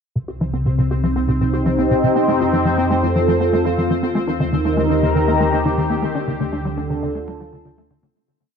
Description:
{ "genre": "ambient, sequencer-driven space music", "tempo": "120 BPM", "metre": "4/4", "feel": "straight", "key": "C dorian", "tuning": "A4 = 440 Hz", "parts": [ { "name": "sweeping resonant pad", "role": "sustained chords", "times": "0.2-8.2 s", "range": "C3 to Bb5", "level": "-18 LUFS", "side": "equal", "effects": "chorus" }, { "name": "tight sequencer bass", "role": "riff", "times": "0.2-8.1 s", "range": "C3 to G4", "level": "-22 LUFS", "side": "equal", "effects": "lush chorus, analog delay" }, { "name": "warm sub bass", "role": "bass", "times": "0.2-8.1 s", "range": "C2 to F2", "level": "-25 LUFS", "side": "equal", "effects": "none" }, { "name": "pulsing gated texture", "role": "texture", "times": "0.2-8.2 s", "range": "C4 to C5", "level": "-28 LUFS", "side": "left 3 dB", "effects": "chorus, built-in reverb" }, { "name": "soft round pluck", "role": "arpeggios", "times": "0.3-8.1 s", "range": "A3 to Eb5", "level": "-32 LUFS", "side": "moving between left 7 dB and right 2 dB", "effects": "none" } ], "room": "wet plate reverb, RT60 2.5 s", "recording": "dreamy mix soaked in reverb, cassette tape", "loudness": "-16 LUFS", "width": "side -6 dB against mid", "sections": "0.2-8.2 A section", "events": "filter sweep on analog synth bass 0.2-8.2; fade-out 5.5-8.2", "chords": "0.2 Cm; 2.2 F; 4.2 Eb; 6.2 Dm", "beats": "| 0.15 0.66 1.16 1.66 | 2.15 2.65 3.15 3.65 | 4.16 4.66 5.16 5.66 | 6.16 6.66 7.16 7.66" }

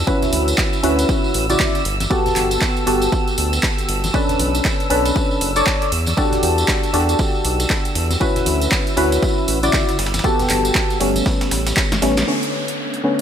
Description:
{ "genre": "deep house", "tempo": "118 BPM", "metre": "4/4", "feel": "swing 60% on 16ths", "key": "D major", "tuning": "A4 = 440 Hz", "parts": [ { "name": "percussive organ stab", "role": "stabs", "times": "0.0-13.2 s", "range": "C#3 to D5", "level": "-19 LUFS", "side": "equal", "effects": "analog chorus, dub echo" }, { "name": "round analog bass", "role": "bass", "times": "0.0-12.2 s", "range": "F#1 to E2", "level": "-21 LUFS", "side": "equal", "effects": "sidechain pumping" }, { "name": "muted studio violin section", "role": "texture", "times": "0.0-12.3 s", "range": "E6", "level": "-29 LUFS", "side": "right 1 dB", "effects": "sidechain pumping" }, { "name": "breakbeat sampler-style drum kit", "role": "drums", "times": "0.1-12.3 s", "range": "ride cymbal, snare drum", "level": "-32 LUFS", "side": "right 2 dB", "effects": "none" }, { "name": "electronic kick drum", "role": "drums", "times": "0.1-11.9 s", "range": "none", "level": "-21 LUFS", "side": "equal", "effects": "overdrive" }, { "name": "tambourine", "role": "percussion", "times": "0.1-12.3 s", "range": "none", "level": "-29 LUFS", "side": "right 2 dB", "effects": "none" }, { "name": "punchy analog drum machine", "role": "drums", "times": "0.2-13.2 s", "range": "handclaps, hi-hat, snare drum", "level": "-23 LUFS", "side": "right 1 dB", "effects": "overdrive" }, { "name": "congas", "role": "percussion", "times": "0.2-12.3 s", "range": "none", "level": "-31 LUFS", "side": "left 4 dB", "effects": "none" }, { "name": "downlifter", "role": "sound effects", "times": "12.3-13.2 s", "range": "none", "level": "-27 LUFS", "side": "equal", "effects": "none" } ], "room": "light reverb, digital ambience", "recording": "none", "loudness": "-15 LUFS", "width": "side -8 dB against mid", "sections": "0.0-12.3 A section", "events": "filter sweep on synth stab 0.0-12.3; drum fill 11.9-12.3; band accent 12.1", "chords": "0.1 Dmaj13; 1.9 Gmaj9; 4.1 Bm9; 5.9 Em11; 8.2 Dmaj13; 10.0 Gmaj9; 11.3 A9; 12.3 Bm9", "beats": "| 0.07 0.58 1.09 1.60 | 2.11 2.62 3.12 3.63 | 4.14 4.65 5.16 5.67 | 6.17 6.68 7.19 7.70 | 8.21 8.72 9.22 9.73 | 10.24 10.75 11.26 11.77 | 12.28 12.79" }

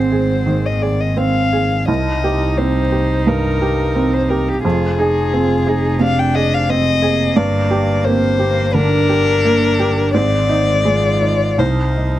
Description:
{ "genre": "neoclassical piano and strings", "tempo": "86 BPM", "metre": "4/4", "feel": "rubato", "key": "C minor", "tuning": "A4 = 439 Hz", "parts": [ { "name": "dark violin", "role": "melody", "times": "0.0-12.2 s", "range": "G4 to G5", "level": "-18 LUFS", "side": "left 5 dB", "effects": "none" }, { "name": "warm cello", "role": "second line", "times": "0.0-12.2 s", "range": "Bb3 to F4", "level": "-23 LUFS", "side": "right 5 dB", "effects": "none" }, { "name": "felt-muted upright piano", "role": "accompaniment", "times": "0.0-12.2 s", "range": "C2 to Ab4", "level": "-18 LUFS", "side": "right 3 dB", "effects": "none" }, { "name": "dark double bass", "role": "bass", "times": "0.0-12.2 s", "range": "F1 to C2", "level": "-19 LUFS", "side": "equal", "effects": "none" } ], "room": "light reverb", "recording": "dark, warm production", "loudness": "-13 LUFS", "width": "side -13 dB against mid", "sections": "0.0-12.2 A section", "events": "none", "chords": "0.0 Ab; 1.9 Cm; 4.6 Fm; 7.4 Gm; 10.1 Ab; 11.6 Cm", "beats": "0.47 1.17 | 1.88 2.58 3.27 3.95 | 4.64 5.32 6.01 6.69 | 7.37 8.05 8.74 9.44 | 10.15 10.86 11.60" }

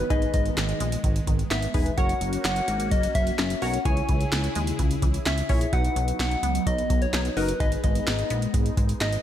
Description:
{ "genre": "synth-pop", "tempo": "128 BPM", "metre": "4/4", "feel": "straight", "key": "unclear", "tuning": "A4 = 440 Hz", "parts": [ { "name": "soft struck synth lead", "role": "melody", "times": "0.0-9.2 s", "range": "B4 to G#5", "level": "-30 LUFS", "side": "left 2 dB", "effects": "chorus, ping-pong delay" }, { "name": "funky polysynth comp", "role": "accompaniment", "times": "0.0-8.3 s", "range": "D#4 to C#5", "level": "-32 LUFS", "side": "equal", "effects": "chorus" }, { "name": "phased analog pad", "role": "sustained chords", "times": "0.0-9.2 s", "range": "C#3 to G#4", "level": "-32 LUFS", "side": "equal", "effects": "phaser, chorus" }, { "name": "resonant blip pluck", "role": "arpeggios", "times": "0.0-9.2 s", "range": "D#3 to D#4", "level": "-36 LUFS", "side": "equal", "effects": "phaser, ping-pong delay" }, { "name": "fat analog bass", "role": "bass", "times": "0.0-9.2 s", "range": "E1 to D#2", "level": "-28 LUFS", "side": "equal", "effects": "none" }, { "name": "electro analog drum machine", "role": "drums", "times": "0.1-9.2 s", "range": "handclaps, hi-hat, kick drum, snare drum", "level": "-26 LUFS", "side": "equal", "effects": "none" } ], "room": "light reverb", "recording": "none", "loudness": "-22 LUFS", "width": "side -11 dB against mid", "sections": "0.0-9.2 A section", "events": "none", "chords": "0.1 G#m; 2.0 F#; 3.9 C#m; 5.7 B; 7.6 G#m", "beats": "| 0.10 0.57 1.04 1.51 | 1.98 2.45 2.92 3.38 | 3.85 4.32 4.79 5.26 | 5.73 6.20 6.67 7.13 | 7.60 8.07 8.54 9.01" }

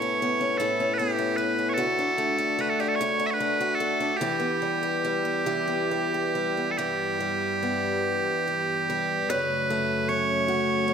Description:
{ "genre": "celtic folk, Celtic slow air", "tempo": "65-79 BPM", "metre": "3/4", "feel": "rubato", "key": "E dorian", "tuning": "A4 = 439 Hz", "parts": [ { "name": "loud bright bagpipes", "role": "melody", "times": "0.0-10.9 s", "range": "G4 to E5", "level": "-26 LUFS", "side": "right 3 dB", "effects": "none" }, { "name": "picked steel-string acoustic guitar", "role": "accompaniment", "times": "0.0-10.9 s", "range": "D2 to G4", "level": "-27 LUFS", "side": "left 2 dB", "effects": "none" }, { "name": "rich chamber string section", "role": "sustained chords", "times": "6.8-10.9 s", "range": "F#2 to A3", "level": "-32 LUFS", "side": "equal", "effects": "none" } ], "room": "moderate scoring stage reverb, RT60 2.0 s", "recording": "none", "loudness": "-23 LUFS", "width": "side -7 dB against mid", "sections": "0.0-6.8 A section; 6.8-10.9 B section", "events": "none", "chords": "0.0 Aadd9; 1.8 D; 4.2 Em; 9.3 F#m", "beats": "0.20 0.98 | 1.77 2.56 3.38 | 4.19 5.02 5.90 | 6.78 7.64 8.48 | 9.29 10.09 10.87" }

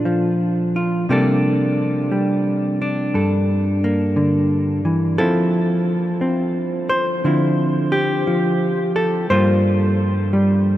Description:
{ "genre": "solo jazz", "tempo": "58 BPM", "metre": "4/4", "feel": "swing 67% on 8ths", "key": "unclear", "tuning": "A4 = 440 Hz", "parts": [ { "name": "hollow-body jazz guitar", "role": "solo", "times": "0.0-10.8 s", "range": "G2 to C5", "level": "-16 LUFS", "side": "equal", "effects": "none" } ], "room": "wet huge ambient reverb, RT60 8.7 s", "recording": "in a vast, echoing space", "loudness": "-16 LUFS", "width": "side -13 dB against mid", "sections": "0.0-10.8 A section", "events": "none", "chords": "0.0 Bbmaj7; 1.1 C7sus2; 5.2 Fmaj7; 7.2 Dm9; 9.3 Gm7", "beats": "0.05 | 1.07 2.10 3.13 4.15 | 5.18 6.21 7.24 8.27 | 9.29 10.32" }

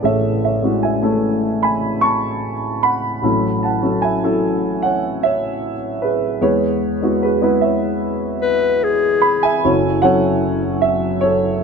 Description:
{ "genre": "acoustic folk-pop ballad", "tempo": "75 BPM", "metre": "4/4", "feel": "straight", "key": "F# minor", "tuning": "A4 = 440 Hz", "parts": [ { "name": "dark grand piano", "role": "melody", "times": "0.0-11.6 s", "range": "F#1 to C#6", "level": "-16 LUFS", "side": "right 1 dB", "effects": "none" }, { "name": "warm clarinet", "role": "second line", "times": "8.4-9.6 s", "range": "G#4 to B4", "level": "-16 LUFS", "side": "left 7 dB", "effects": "none" } ], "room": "light reverb", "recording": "close, detailed microphones, lossy compression artefacts, faint mains hum", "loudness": "-15 LUFS", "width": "side -5 dB against mid", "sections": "0.0-9.6 A section; 9.6-11.6 B section", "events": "none", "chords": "0.0 Amaj7; 3.2 F#m7/A; 6.4 E; 9.6 F#m7", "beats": "| 0.04 0.84 1.64 2.43 | 3.23 4.03 4.83 5.62 | 6.42 7.22 8.03 8.84 | 9.65 10.44 11.23" }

